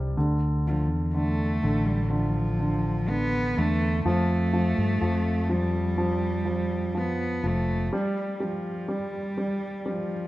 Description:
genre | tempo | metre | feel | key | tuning
pop | 62 BPM | 4/4 | straight | unclear | A4 = 442 Hz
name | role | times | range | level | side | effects
warm grand piano | accompaniment | 0.0-10.3 s | C3 to G3 | -28 LUFS | equal | none
mellow fretless electric bass | bass | 0.0-7.9 s | F1 to G2 | -26 LUFS | equal | none
warm cello | melody | 0.7-10.3 s | F3 to B3 | -29 LUFS | equal | none
room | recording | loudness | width
moderate lush hall reverb, RT60 2.5 s | rough home demo mix | -24 LUFS | side -17 dB against mid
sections
0.0-10.3 A section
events
break 7.9-10.3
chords
0.2 Dm; 4.1 F; 7.9 N.C.

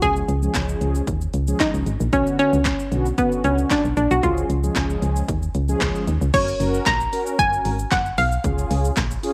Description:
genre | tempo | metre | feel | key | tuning
dance-pop | 114 BPM | 4/4 | straight | F# major | A4 = 440 Hz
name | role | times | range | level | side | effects
hollow square pluck | melody | 0.0-9.2 s | B3 to A#5 | -23 LUFS | equal | chorus, slapback echo
mellow synth brass | accompaniment | 0.0-9.3 s | D3 to A#4 | -29 LUFS | equal | chorus, phaser, sidechain pumping
solid FM bass | bass | 0.0-9.2 s | F#1 to D#2 | -25 LUFS | equal | sidechain pumping
punchy analog drum machine | drums | 0.0-9.3 s | crash cymbal, handclaps, hi-hat, kick drum, shaker, snare drum | -28 LUFS | equal | none
room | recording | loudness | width
light reverb, digital ambience | none | -21 LUFS | mono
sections
0.0-6.3 A section; 6.3-9.3 B section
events
none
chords
0.0 C#; 2.1 Bmadd9; 4.2 C#; 6.3 F#; 8.4 C#

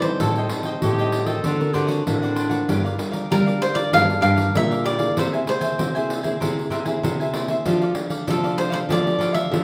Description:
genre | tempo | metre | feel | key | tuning
samba and choro | 97 BPM | 4/4 | straight | unclear | A4 = 439 Hz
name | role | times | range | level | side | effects
cavaquinho | melody | 0.0-9.6 s | A4 to F5 | -25 LUFS | equal | none
cavaquinho | accompaniment | 0.0-9.6 s | D4 to G#5 | -32 LUFS | equal | none
nylon-string guitar | accompaniment | 0.0-9.6 s | A2 to Bb4 | -30 LUFS | equal | none
nylon-string guitar | bass | 0.0-9.6 s | G2 to C4 | -27 LUFS | equal | none
pandeiro | percussion | 0.0-9.6 s | none | -28 LUFS | equal | none
warm clarinet | second line | 0.8-3.1 s | D4 to A4 | -28 LUFS | equal | none
room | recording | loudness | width
wet large studio reverb, RT60 0.9 s | none | -22 LUFS | mono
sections
0.0-9.6 A section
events
none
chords
0.2 Am7b5; 1.4 D7b13; 2.7 Gm7; 5.2 Caug7; 7.7 F69

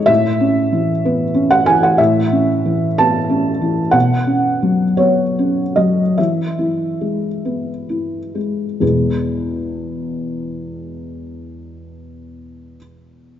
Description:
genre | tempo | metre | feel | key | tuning
neoclassical minimalist piano | 42-64 BPM (dotted quarters) | 6/8 | rubato | E major | A4 = 440 Hz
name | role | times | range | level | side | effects
felt-muted upright piano | solo | 0.0-13.4 s | E2 to A5 | -15 LUFS | equal | none
room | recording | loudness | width
moderate concert hall reverb, RT60 2.2 s | nothing above 7.6 kHz | -14 LUFS | side -10 dB against mid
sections
0.0-8.8 A section; 8.8-13.4 B section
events
slowing down 3.0-8.8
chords
0.1 Aadd9; 3.9 Bsus2; 6.2 E

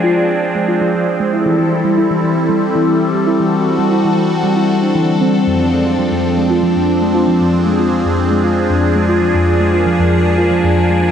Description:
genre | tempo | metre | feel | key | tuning
IDM | 116 BPM | 4/4 | straight | unclear | A4 = 440 Hz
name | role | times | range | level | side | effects
phased analog pad | sustained chords | 0.0-11.1 s | F3 to A4 | -15 LUFS | left 1 dB | phaser, chorus, vintage 12-bit sampler grit
harp-like synth pluck | arpeggios | 0.0-11.1 s | F2 to F4 | -14 LUFS | equal | chorus, tape echo
room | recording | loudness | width
wet lush hall reverb, RT60 3.0 s | dreamy mix soaked in reverb | -12 LUFS | side -8 dB against mid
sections
0.0-11.1 A section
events
none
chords
0.0 Fm; 1.3 Am7; 5.5 Dm7; 9.6 Bb7

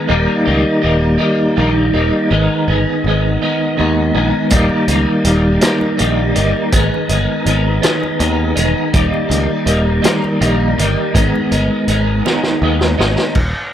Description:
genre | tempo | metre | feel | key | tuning
psychedelic rock | 54 BPM (dotted quarters) | 6/8 | straight | unclear | A4 = 444 Hz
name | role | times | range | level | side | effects
twelve-string electric guitar | riff | 0.0-13.4 s | Eb3 to Eb4 | -14 LUFS | equal | rotary speaker, double-tracked left and right
picked electric bass | bass | 0.1-13.5 s | Eb1 to Eb2 | -16 LUFS | equal | none
vintage drum kit | drums | 4.5-13.5 s | crash cymbal, hi-hat, kick drum, snare drum | -18 LUFS | equal | none
congas | percussion | 4.5-13.0 s | none | -29 LUFS | right 10 dB | none
room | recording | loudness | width
small room ambience | none | -12 LUFS | side -10 dB against mid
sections
0.0-13.4 A section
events
drum fill 12.3-13.4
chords
0.1 Eb; 2.3 Abm; 4.5 Eb; 6.7 Abm; 8.9 Eb; 11.2 Abm

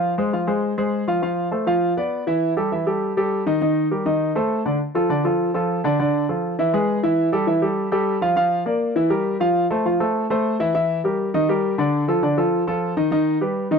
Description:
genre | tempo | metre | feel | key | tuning
jazz | 202 BPM | 4/4 | straight | unclear | A4 = 440 Hz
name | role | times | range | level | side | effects
warm grand piano | solo | 0.0-13.8 s | D3 to F5 | -18 LUFS | equal | none
room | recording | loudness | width
studio reverb | dry, close 1970s-style studio recording | -18 LUFS | side -6 dB against mid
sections
0.0-4.8 A section; 4.8-13.8 B section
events
none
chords
0.0 Fm; 1.2 F; 1.8 Dm69; 2.4 Emadd11; 3.6 Eb; 4.2 Cm69; 4.8 Dm; 6.6 E; 7.2 A5; 8.4 Bb/F; 9.0 Edim; 9.6 Fmaj7; 10.7 Edim; 11.3 Eb; 11.9 Dm; 13.1 Gaug

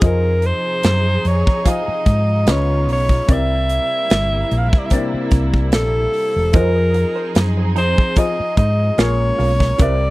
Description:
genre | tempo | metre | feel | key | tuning
lush 1970s-style soul | 74 BPM | 4/4 | swing 54% on 16ths | unclear | A4 = 441 Hz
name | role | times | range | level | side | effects
clear alto saxophone | melody | 0.0-10.1 s | A4 to F5 | -20 LUFS | equal | none
dark grand piano | accompaniment | 0.0-10.1 s | C3 to F5 | -25 LUFS | left 3 dB | none
warm studio string section | sustained chords | 0.0-10.1 s | C3 to Ab4 | -26 LUFS | right 1 dB | none
hollow-body short-scale fingered electric bass | bass | 0.0-10.1 s | E1 to Ab2 | -18 LUFS | equal | none
modern studio drum kit | drums | 0.0-10.0 s | hi-hat, kick drum, snare drum | -15 LUFS | equal | none
electric guitar through a small old amp | riff | 6.5-10.1 s | Eb4 to Db5 | -27 LUFS | right 7 dB | wah
room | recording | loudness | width
little or no reverb | dry, close 1970s-style studio recording | -14 LUFS | side -19 dB against mid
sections
0.0-10.1 A section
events
none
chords
0.0 Fm7; 2.5 Db9; 3.3 C7; 6.5 Fm7; 9.0 Bbm7

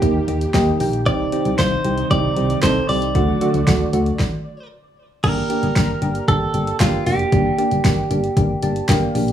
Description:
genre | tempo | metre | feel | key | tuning
synth-pop | 115 BPM | 4/4 | straight | G minor | A4 = 440 Hz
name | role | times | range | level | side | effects
direct-recorded clean electric guitar | melody | 0.0-8.6 s | F4 to D5 | -23 LUFS | right 2 dB | tape echo
soft electric-piano-like synth keys | accompaniment | 0.0-9.3 s | A3 to A5 | -21 LUFS | equal | chorus
string machine, cellos | sustained chords | 0.0-4.2 s | C3 to G4 | -26 LUFS | right 1 dB | phaser, ensemble chorus
solid FM bass | bass | 0.0-9.3 s | F1 to Eb2 | -22 LUFS | equal | none
deep house drum kit | drums | 0.0-9.3 s | crash cymbal, handclaps, hi-hat, kick drum, snare drum | -21 LUFS | equal | none
room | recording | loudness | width
moderate studio reverb, RT60 0.6 s | small room ambience | -16 LUFS | side -10 dB against mid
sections
0.0-5.2 A section; 5.2-9.3 B section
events
synth keys fill 0.3-1.1, 8.4-9.3; stop 4.2-5.2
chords
0.0 Eb; 1.1 Cm; 3.2 D; 5.2 Gm

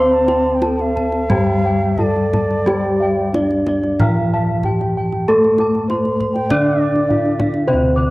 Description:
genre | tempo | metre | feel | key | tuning
Javanese gamelan | 88-104 BPM | 4/4 | straight | D slendro | A4 = 440 Hz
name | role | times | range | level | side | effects
gamelan-type bronze metallophone | melody | 0.0-8.1 s | C4-25c to D5 | -20 LUFS | equal | cassette tape
bansuri | second line | 0.0-7.6 s | D5 to C6-27c | -25 LUFS | right 1 dB | cassette tape
gamelan-type bronze metallophone | accompaniment | 0.0-8.1 s | C3-25c to D4 | -20 LUFS | left 1 dB | cassette tape
gamelan-type bossed gongs | arpeggios | 0.0-8.1 s | D5 to D6 | -29 LUFS | left 2 dB | cassette tape
gamelan-type bronze metallophone | arpeggios | 0.0-8.1 s | C5-25c to D6 | -26 LUFS | right 2 dB | cassette tape
gamelan-type bossed gongs | bass | 0.0-8.1 s | D2 to C5-25c | -20 LUFS | equal | none
kendang | percussion | 0.3-7.6 s | none | -23 LUFS | equal | none
room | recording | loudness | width
light reverb, studio reverb | home recording on cassette | -14 LUFS | side -20 dB against mid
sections
0.0-7.7 A section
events
none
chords
none

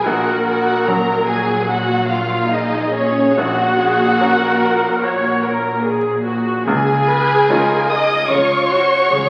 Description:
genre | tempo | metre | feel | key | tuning
cinematic | 73 BPM | 4/4 | rubato | unclear | A4 = 440 Hz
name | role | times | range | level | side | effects
dark symphonic violin section | melody | 0.0-9.3 s | C#5 to D#6 | -22 LUFS | equal | none
warm symphonic violin section | second line | 0.0-9.3 s | C#4 to D#5 | -20 LUFS | equal | none
bright grand piano | accompaniment | 0.0-9.3 s | A#1 to F#4 | -26 LUFS | equal | none
warm symphonic viola section | accompaniment | 0.0-9.3 s | F#3 to C#5 | -23 LUFS | equal | none
rich symphonic cello section | bass | 0.1-9.3 s | A#2 to C#3 | -26 LUFS | equal | none
warm symphonic double bass section | bass | 0.1-9.3 s | A#1 to C#2 | -31 LUFS | equal | none
room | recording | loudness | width
wet scoring stage reverb, RT60 1.8 s | very old 78 rpm record, vinyl crackle | -16 LUFS | mono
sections
0.0-9.3 A section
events
none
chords
0.1 F#/A#; 6.7 C#add9

